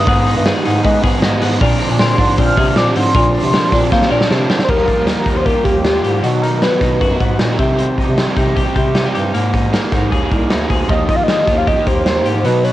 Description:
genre	jangly indie pop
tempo	155 BPM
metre	4/4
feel	straight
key	Eb major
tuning	A4 = 440 Hz
part	warm velvety synth lead	melody	0.0-7.2, 10.9-12.7 s	F#4 to F6	-18 LUFS	equal	chorus
part	crunchy overdriven guitar	accompaniment	0.0-12.7 s	Ab2 to Ab4	-20 LUFS	right 6 dB	none
part	twelve-string electric guitar	arpeggios	0.0-12.7 s	F3 to Bb4	-22 LUFS	left 8 dB	tape echo
part	breathy bass clarinet	bass	0.0-12.7 s	C2 to Bb3	-17 LUFS	equal	none
part	raw garage drum kit	drums	0.1-12.7 s	crash cymbal, hi-hat, kick drum, snare drum	-17 LUFS	equal	cassette tape
room	little or no reverb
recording	home recording on cassette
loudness	-12 LUFS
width	side -14 dB against mid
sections	0.0-4.7 A section; 4.7-12.7 B section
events	drum fill 3.9-4.7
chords	0.0 Abm; 1.6 Bbadd9; 4.7 Ebadd9; 6.2 B; 7.6 Cm; 9.3 Absus2; 10.9 Ebadd9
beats	| 0.07 0.46 0.84 1.23 | 1.61 1.99 2.38 2.76 | 3.15 3.53 3.92 4.30 | 4.69 5.07 5.46 5.85 | 6.24 6.62 7.01 7.40 | 7.79 8.18 8.56 8.95 | 9.34 9.73 10.12 10.51 | 10.90 11.29 11.67 12.06 | 12.45

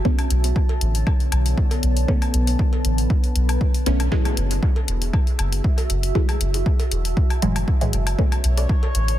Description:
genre	dub techno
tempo	118 BPM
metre	4/4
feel	swing 53% on 16ths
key	B minor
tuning	A4 = 439 Hz
part	deep dark ambient pad	sustained chords	0.0-9.2 s	D3 to A5	-29 LUFS	right 1 dB	chorus, built-in reverb, sidechain pumping
part	filtered dub chord stab	stabs	0.0-9.2 s	A2 to C#4	-27 LUFS	equal	phaser, vintage 12-bit sampler grit, sidechain pumping, dub echo
part	electronic kick drum	drums	0.1-8.8 s	none	-20 LUFS	equal	none
part	electronic hi-hat	drums	0.2-9.2 s	none	-29 LUFS	left 5 dB	overdrive
part	woodblock and cowbell	percussion	0.2-8.9 s	none	-35 LUFS	left 3 dB	overdrive, sidechain pumping on perc, dub echo
part	soft dub sub bass	bass	0.3-9.2 s	E1 to B1	-20 LUFS	equal	sidechain pumping
part	metallic inharmonic drone	texture	8.5-9.2 s	C#5	-31 LUFS	left 3 dB	chorus, built-in reverb, sidechain pumping
part	filtered dub chord stab	riff	8.6-8.7 s	C#4 to D5	-33 LUFS	equal	chorus, vintage 12-bit sampler grit, sidechain pumping, dub echo
room	digital ambience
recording	dense, heavily limited modern master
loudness	-18 LUFS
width	side -13 dB against mid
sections	0.0-9.2 A section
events	none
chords	0.1 Bm9; 4.1 F#m9; 8.2 Bm9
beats	| 0.05 0.56 1.07 1.58 | 2.08 2.59 3.10 3.61 | 4.12 4.63 5.13 5.64 | 6.15 6.66 7.17 7.68 | 8.19 8.70

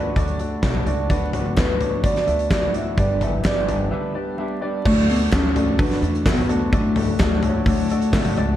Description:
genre	piano-driven pop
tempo	128 BPM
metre	4/4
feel	straight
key	D major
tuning	A4 = 440 Hz
part	soft octave-layered synth lead	melody	0.0-8.3 s	A3 to E5	-24 LUFS	left 1 dB	chorus, tremolo
part	warm upright piano	accompaniment	0.0-8.6 s	G2 to E5	-26 LUFS	left 1 dB	lush chorus
part	electric guitar at the edge of break-up	riff	0.0-8.6 s	G2 to G4	-29 LUFS	right 4 dB	lush chorus
part	upright bass	bass	0.0-8.6 s	G1 to E2	-25 LUFS	equal	none
part	huge arena drum kit	drums	0.2-8.5 s	crash cymbal, handclaps, hi-hat, kick drum, snare drum, toms	-22 LUFS	equal	vintage 12-bit sampler grit
part	group handclap	percussion	1.6-8.2 s	none	-39 LUFS	left 5 dB	none
room	light reverb, studio reverb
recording	vinyl crackle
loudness	-18 LUFS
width	side -12 dB against mid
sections	0.0-4.8 A section; 4.8-8.6 B section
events	break 3.9-4.8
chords	0.0 D; 1.1 Bm/D; 3.0 G; 4.8 D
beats	0.16 0.63 | 1.10 1.57 2.04 2.51 | 2.98 3.44 3.91 4.38 | 4.85 5.32 5.79 6.26 | 6.72 7.19 7.66 8.13

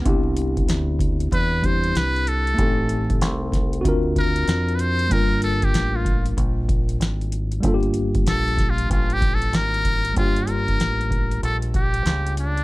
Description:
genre	hip hop, jazz-hop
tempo	95 BPM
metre	4/4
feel	swing 64% on 16ths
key	G dorian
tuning	A4 = 440 Hz
part	mellow tine electric piano	accompaniment	0.0-12.6 s	G3 to A#4	-26 LUFS	left 1 dB	medium stereo tremolo, plate reverb
part	deep dub fingered electric bass	bass	0.0-12.6 s	G1 to E#2	-24 LUFS	equal	none
part	booming analog drum machine	drums	0.1-12.6 s	hi-hat, kick drum, snare drum	-23 LUFS	equal	vintage 12-bit sampler grit
part	trumpet with metal mute	melody	1.3-12.6 s	D4 to C5	-24 LUFS	equal	plate reverb
room	little or no reverb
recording	vinyl crackle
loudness	-19 LUFS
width	side -20 dB against mid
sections	0.0-10.2 A section; 10.2-12.6 B section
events	muted trumpet solo 0.0-10.2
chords	0.1 Cmaj7; 2.6 Am7b5; 3.8 D7alt; 5.1 Gm9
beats	| 0.06 0.69 1.32 1.95 | 2.58 3.22 3.85 4.48 | 5.11 5.74 6.38 7.01 | 7.64 8.27 8.90 9.53 | 10.16 10.80 11.43 12.06

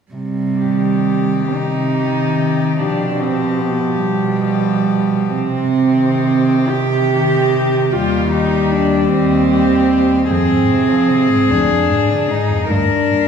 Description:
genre	classical, lyrical piece for cello ensemble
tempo	41-51 BPM (dotted quarters)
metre	6/8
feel	rubato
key	C minor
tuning	A4 = 441 Hz
part	warm cello	second line	0.1-13.3 s	G3 to G4	-16 LUFS	right 4 dB	none
part	warm cello	bass	0.1-13.3 s	Eb2 to C3	-20 LUFS	right 1 dB	none
part	warm cello	melody	0.6-13.3 s	G4 to Bb4	-21 LUFS	left 7 dB	none
part	warm cello	accompaniment	0.6-13.3 s	D2 to G3	-21 LUFS	left 4 dB	none
room	wet recital hall reverb, RT60 1.4 s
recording	heard from further back in the room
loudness	-13 LUFS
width	side -7 dB against mid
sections	0.1-13.3 A section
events	none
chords	0.1 Cm; 2.8 G7/B; 5.3 Cm; 7.9 Cm/Eb; 10.3 Fm; 11.5 Ddim; 12.7 Gm/D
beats	| 0.14 1.53 | 2.79 4.01 | 5.35 6.71 | 7.93 9.12 | 10.30 11.50 | 12.70

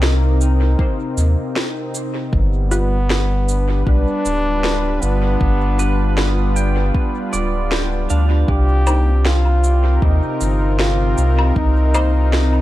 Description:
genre	ambient dub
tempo	78 BPM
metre	4/4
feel	swing 54% on 16ths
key	C minor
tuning	A4 = 440 Hz
part	clear trombone	melody	0.0-12.6 s	B3 to G4	-24 LUFS	equal	dub echo
part	warm analog pad	sustained chords	0.0-12.6 s	C3 to B4	-24 LUFS	equal	chorus
part	pedal steel guitar	arpeggios	0.0-10.1 s	B3 to G5	-29 LUFS	right 4 dB	dub echo
part	warm sub bass	bass	0.0-12.6 s	D1 to Eb2	-16 LUFS	equal	none
part	electronic snare drum, shaker and woodblock	drums	0.0-12.5 s	none	-24 LUFS	equal	dub echo
part	electronic kick drum	drums	0.8-11.7 s	none	-19 LUFS	equal	none
part	filtered dub chord stab	stabs	2.7-3.0, 8.9-12.1 s	G3 to C5	-31 LUFS	left 1 dB	none
room	little or no reverb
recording	none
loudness	-15 LUFS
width	side -15 dB against mid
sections	0.0-12.6 A section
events	none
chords	0.0 Cm7; 2.3 G7; 8.5 Cm7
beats	0.02 0.79 1.56 | 2.33 3.10 3.87 4.64 | 5.41 6.18 6.95 7.72 | 8.49 9.26 10.02 10.79 | 11.56 12.33

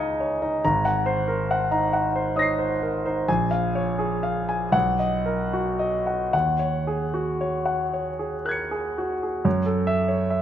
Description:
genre	classical, impressionist solo piano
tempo	36-48 BPM (dotted quarters)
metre	6/8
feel	rubato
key	Eb minor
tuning	A4 = 440 Hz
part	clear concert grand piano	solo	0.0-10.4 s	Ab1 to Db7	-22 LUFS	equal	none
room	light reverb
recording	close, detailed microphones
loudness	-22 LUFS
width	side -10 dB against mid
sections	0.0-9.5 A section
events	none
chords	0.0 Dbadd9; 0.6 Ab9; 3.3 Bbm7; 4.7 Bmaj7; 6.3 Ebm7; 9.5 F#m7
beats	| 0.62 1.94 | 3.27 4.74 | 6.33 7.93 | 9.45

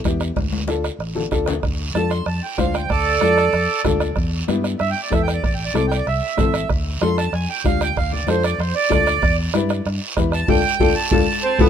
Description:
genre	latin, cumbia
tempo	190 BPM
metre	4/4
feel	straight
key	D dorian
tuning	A4 = 440 Hz
part	fingered electric bass	bass	0.0-11.7 s	A1 to G2	-24 LUFS	equal	none
part	bombo	percussion	0.0-11.7 s	none	-22 LUFS	right 2 dB	none
part	congas	percussion	0.0-11.7 s	none	-27 LUFS	left 7 dB	none
part	guiro	percussion	0.0-11.7 s	none	-32 LUFS	right 5 dB	none
part	warm upright piano	accompaniment	0.1-11.7 s	B3 to C5	-23 LUFS	left 4 dB	none
part	accordion	melody	1.9-11.7 s	A4 to C6	-21 LUFS	right 5 dB	none
part	bright clarinet	second line	11.5-11.7 s	B3 to C4	-28 LUFS	right 1 dB	none
room	light reverb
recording	minimal, uncompressed stereo recording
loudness	-17 LUFS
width	side -8 dB against mid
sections	0.0-1.6 A section; 1.6-11.7 B section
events	drum fill 0.4-1.6; accordion solo 1.6-11.7; band accent 10.5-11.7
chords	0.4 Dm; 4.2 Em; 5.4 Am; 6.7 Dm; 9.2 Em; 10.5 Dm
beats	0.05 | 0.37 0.68 1.00 1.32 | 1.64 1.95 2.27 2.59 | 2.90 3.22 3.54 3.85 | 4.17 4.49 4.80 5.12 | 5.43 5.75 6.07 6.38 | 6.70 7.02 7.33 7.65 | 7.96 8.28 8.60 8.91 | 9.23 9.54 9.86 10.18 | 10.49 10.81 11.12 11.44

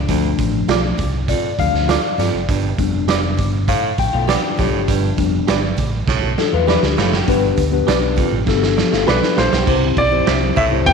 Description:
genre	uptempo 1960s-style soul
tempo	100 BPM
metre	4/4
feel	straight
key	unclear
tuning	A4 = 440 Hz
part	electric guitar through a small old amp	riff	0.0-0.5, 4.1-9.8 s	F3 to G4	-25 LUFS	left 10 dB	none
part	warm baritone saxophone	riff	0.0-10.8 s	D2 to C3	-25 LUFS	right 10 dB	none
part	fingered electric bass	bass	0.0-10.9 s	F1 to G2	-21 LUFS	equal	none
part	mellow tine electric piano	accompaniment	0.1-10.9 s	F3 to G5	-20 LUFS	left 10 dB	medium stereo tremolo
part	raw garage drum kit	drums	0.1-10.9 s	crash cymbal, hi-hat, kick drum, ride cymbal, snare drum	-20 LUFS	right 4 dB	none
part	congas	percussion	0.4-10.9 s	none	-31 LUFS	right 8 dB	none
part	electric guitar through a small old amp	stabs	0.7-10.4 s	F4 to E5	-24 LUFS	right 8 dB	tremolo
part	dark grand piano	melody	9.1-10.9 s	B4 to G5	-18 LUFS	equal	none
room	moderate echo chamber reverb, RT60 1.8 s, small room ambience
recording	1960s-style stereo with parts hard left and right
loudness	-14 LUFS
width	side -5 dB against mid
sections	0.0-7.3 A section; 7.3-9.7 B section; 9.7-10.9 C section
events	tine electric piano solo 0.0-7.3; drum fill 6.1-7.3, 8.5-9.7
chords	0.0 Dm; 2.5 G; 9.7 C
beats	| 0.09 0.69 1.29 1.89 | 2.49 3.09 3.69 4.28 | 4.88 5.48 6.08 6.68 | 7.28 7.88 8.47 9.07 | 9.67 10.27 10.87

